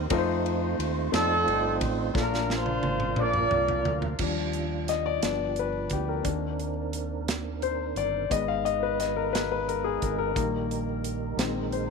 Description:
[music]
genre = slow gospel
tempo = 58 BPM (dotted quarters)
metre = 6/8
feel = straight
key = Eb major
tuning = A4 = 435 Hz
[part]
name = mellow horn section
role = melody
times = 0.0-4.2 s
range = C4 to D5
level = -27 LUFS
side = right 1 dB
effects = none
[part]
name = warm concert grand piano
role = accompaniment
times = 0.0-11.9 s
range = Bb2 to F5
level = -29 LUFS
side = left 14 dB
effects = none
[part]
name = percussive tonewheel organ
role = sustained chords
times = 0.0-11.9 s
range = Eb3 to C5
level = -34 LUFS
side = right 16 dB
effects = fast rotary speaker, chorus vibrato
[part]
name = fingered electric bass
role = bass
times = 0.0-11.9 s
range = G1 to F2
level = -33 LUFS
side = right 1 dB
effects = none
[part]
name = modern studio drum kit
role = drums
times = 0.1-11.9 s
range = crash cymbal, hi-hat, kick drum, ride cymbal, snare drum, toms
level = -33 LUFS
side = right 2 dB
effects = none
[sound]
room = light reverb, small room ambience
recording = 1960s-style stereo with parts hard left and right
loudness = -25 LUFS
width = side -4 dB against mid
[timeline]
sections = 0.0-4.2 A section; 4.2-11.9 B section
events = drum fill 2.2-4.2; grand piano solo 4.2-11.9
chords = 0.1 F7; 2.2 Bb; 4.2 Ebmaj9; 5.2 G7; 6.3 Cm9/Eb; 8.3 Abm; 10.4 Eb/Bb; 11.4 Bb9sus4

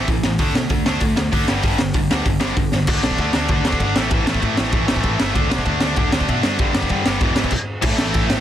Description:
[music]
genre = punk rock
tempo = 194 BPM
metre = 4/4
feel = straight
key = unclear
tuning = A4 = 440 Hz
[part]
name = tight distorted guitar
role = riff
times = 0.0-8.4 s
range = E2 to D4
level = -20 LUFS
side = equal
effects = distortion
[part]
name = picked electric bass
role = bass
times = 0.0-8.4 s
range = E1 to B2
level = -25 LUFS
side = equal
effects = none
[part]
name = raw garage drum kit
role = drums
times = 0.1-8.4 s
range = crash cymbal, hi-hat, kick drum, ride cymbal, snare drum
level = -19 LUFS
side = equal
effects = none
[sound]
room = little or no reverb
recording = dense, heavily limited modern master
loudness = -16 LUFS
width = side -11 dB against mid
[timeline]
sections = 0.0-2.9 A section; 2.9-7.8 B section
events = drum fill 2.7; stop 7.5-7.8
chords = 0.4 D5; 1.5 G5; 2.9 D5; 4.0 A5; 5.4 D5; 6.6 G5; 7.2 E; 7.8 A5

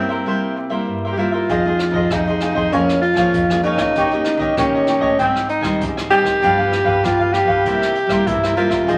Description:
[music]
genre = samba and choro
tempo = 97 BPM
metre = 4/4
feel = straight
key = unclear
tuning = A4 = 440 Hz
[part]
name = breathy alto saxophone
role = melody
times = 0.0-9.0 s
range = C4 to G4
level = -21 LUFS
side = equal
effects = none
[part]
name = cavaquinho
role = accompaniment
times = 0.0-9.0 s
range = D4 to Ab5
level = -23 LUFS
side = equal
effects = none
[part]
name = nylon-string guitar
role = accompaniment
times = 0.0-9.0 s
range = G2 to Ab4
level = -27 LUFS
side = equal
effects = none
[part]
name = nylon-string guitar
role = bass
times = 1.5-9.0 s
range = F2 to G3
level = -26 LUFS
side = equal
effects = none
[part]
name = jazz brush drum kit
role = drums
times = 1.5-9.0 s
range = hi-hat, kick drum, rim click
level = -30 LUFS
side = equal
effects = none
[sound]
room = wet club reverb, RT60 0.7 s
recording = vinyl crackle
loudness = -18 LUFS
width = mono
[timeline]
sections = 0.0-9.0 A section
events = none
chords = 0.0 C7; 1.5 Fm7; 2.7 Bbm7/F; 4.0 Eb7; 5.2 Abmaj7; 6.4 G7; 7.7 C7

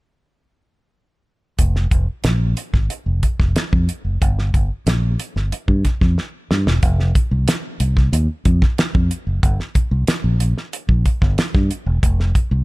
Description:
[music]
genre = funk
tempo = 92 BPM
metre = 4/4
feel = straight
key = unclear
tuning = A4 = 439 Hz
[part]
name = fingered electric bass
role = bass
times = 1.6-12.6 s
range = E1 to G2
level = -17 LUFS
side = equal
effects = none
[part]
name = damped 70s drum kit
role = drums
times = 1.6-12.5 s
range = hi-hat, kick drum, snare drum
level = -18 LUFS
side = equal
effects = none
[sound]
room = little or no reverb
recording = none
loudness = -16 LUFS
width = side -22 dB against mid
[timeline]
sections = 1.6-6.8 A section; 6.8-12.6 B section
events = drum fill 6.2-6.8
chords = none

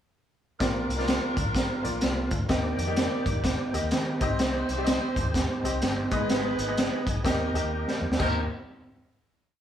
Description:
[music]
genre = uptempo 1960s-style soul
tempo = 126 BPM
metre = 4/4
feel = swing 62% on 8ths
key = Eb major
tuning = A4 = 440 Hz
[part]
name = mellow horn section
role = second line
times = 0.6-8.4 s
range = F3 to D5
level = -34 LUFS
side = equal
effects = none
[part]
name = clear upright piano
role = accompaniment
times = 0.6-8.5 s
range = Eb2 to Eb5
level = -32 LUFS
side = left 2 dB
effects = none
[part]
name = overdriven tonewheel organ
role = sustained chords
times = 0.6-8.5 s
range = D3 to Ab4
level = -37 LUFS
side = equal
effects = chorus vibrato, fast rotary speaker
[part]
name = vintage muted fingered electric bass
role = bass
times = 0.6-8.5 s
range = G1 to Eb3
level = -33 LUFS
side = equal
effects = none
[part]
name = crunchy breakbeat drum kit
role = drums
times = 0.6-8.3 s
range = crash cymbal, hi-hat, kick drum, snare drum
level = -27 LUFS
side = equal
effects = none
[sound]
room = light reverb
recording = band playing live in one room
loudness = -24 LUFS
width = side -10 dB against mid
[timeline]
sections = 0.6-8.2 A section; 8.2-9.6 final chord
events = drum fill 7.7-8.2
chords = 0.6 Bb; 2.5 Eb; 4.2 Cm; 6.1 Abm; 7.2 Eb

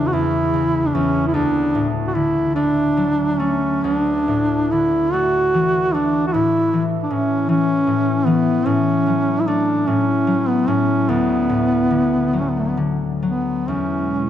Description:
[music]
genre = celtic folk, Celtic slow air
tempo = 43-52 BPM (dotted quarters)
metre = 6/8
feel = rubato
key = unclear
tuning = A4 = 441 Hz
[part]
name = mellow duduk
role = melody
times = 0.0-14.3 s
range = A3 to F#4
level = -18 LUFS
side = right 1 dB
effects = none
[part]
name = concert harp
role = accompaniment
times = 0.0-14.3 s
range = D2 to A3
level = -21 LUFS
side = left 3 dB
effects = none
[part]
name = warbly tape-like pad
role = sustained chords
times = 13.9-14.3 s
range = B2 to E4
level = -26 LUFS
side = right 3 dB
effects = chorus, built-in reverb
[sound]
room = moderate church reverb, RT60 3.4 s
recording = dark, warm production, faint mains hum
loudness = -16 LUFS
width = side -10 dB against mid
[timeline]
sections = 0.0-13.7 A section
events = none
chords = 0.0 Dmaj7sus2/E (rootless); 1.3 D; 3.8 Dsus2; 6.3 A; 8.7 F#m/A; 11.1 D6; 13.7 E

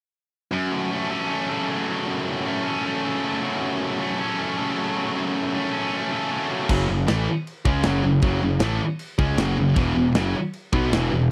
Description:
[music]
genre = heavy metal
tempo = 156 BPM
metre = 4/4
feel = straight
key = F# minor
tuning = A4 = 440 Hz
[part]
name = heavy high-gain guitar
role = riff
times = 0.5-11.3 s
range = E2 to C#4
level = -29 LUFS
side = equal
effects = distortion
[part]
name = heavy high-gain guitar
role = riff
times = 0.5-11.3 s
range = E2 to A4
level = -27 LUFS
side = equal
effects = distortion
[part]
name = fuzz picked electric bass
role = bass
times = 6.7-11.3 s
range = E1 to C#2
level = -26 LUFS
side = equal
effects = overdrive
[part]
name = tight metal drum kit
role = drums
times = 6.7-11.0 s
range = crash cymbal, kick drum, snare drum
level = -26 LUFS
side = equal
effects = none
[sound]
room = small room ambience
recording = dry, close 1970s-style studio recording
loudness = -24 LUFS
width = mono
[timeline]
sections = 0.5-6.7 A section; 6.7-11.3 B section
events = none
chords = 0.5 F#m; 9.8 E5

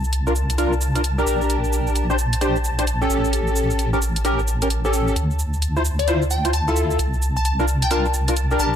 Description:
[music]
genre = UK garage, two-step garage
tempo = 131 BPM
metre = 4/4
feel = swing 63% on 16ths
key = unclear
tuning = A4 = 440 Hz
[part]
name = soft string machine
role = sustained chords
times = 0.0-8.8 s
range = A5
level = -31 LUFS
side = left 1 dB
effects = ensemble chorus
[part]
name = deep soft wobble bass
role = bass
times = 0.0-8.8 s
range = A1 to D2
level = -21 LUFS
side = equal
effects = chorus
[part]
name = electronic cabasa and hi-hat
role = drums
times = 0.0-8.7 s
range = none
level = -29 LUFS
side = right 2 dB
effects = none
[part]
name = percussive organ stab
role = stabs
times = 0.3-8.8 s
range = C#4 to C5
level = -22 LUFS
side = left 1 dB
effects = ensemble chorus, ping-pong delay
[part]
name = glassy wavetable pluck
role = melody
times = 6.0-8.8 s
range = D5 to A5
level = -25 LUFS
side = left 1 dB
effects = chorus, ping-pong delay
[sound]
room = light reverb, digital ambience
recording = dark, warm production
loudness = -18 LUFS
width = side -9 dB against mid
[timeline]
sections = 0.0-8.8 A section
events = none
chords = 0.0 C9sus4; 1.3 Bb69; 3.1 A7b9; 5.2 Dm9; 7.0 C9sus4

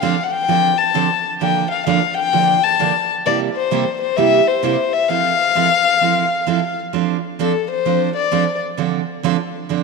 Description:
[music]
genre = country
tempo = 130 BPM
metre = 4/4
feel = swing 66% on 8ths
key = F major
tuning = A4 = 440 Hz
[part]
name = dark violin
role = melody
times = 0.0-8.6 s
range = A4 to A5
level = -17 LUFS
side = left 7 dB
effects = none
[part]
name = picked steel-string acoustic guitar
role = accompaniment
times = 0.0-9.8 s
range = C3 to A4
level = -20 LUFS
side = right 14 dB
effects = none
[sound]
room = wet plate reverb, RT60 2.9 s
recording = 1960s-style stereo with parts hard left and right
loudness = -15 LUFS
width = side -4 dB against mid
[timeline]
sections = 0.0-6.9 A section; 6.9-9.8 B section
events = violin solo 6.9-9.8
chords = 0.0 Dm7; 1.4 Bbmaj7/D; 3.3 C7; 5.1 Fmaj7; 6.9 F6; 8.8 Dm7

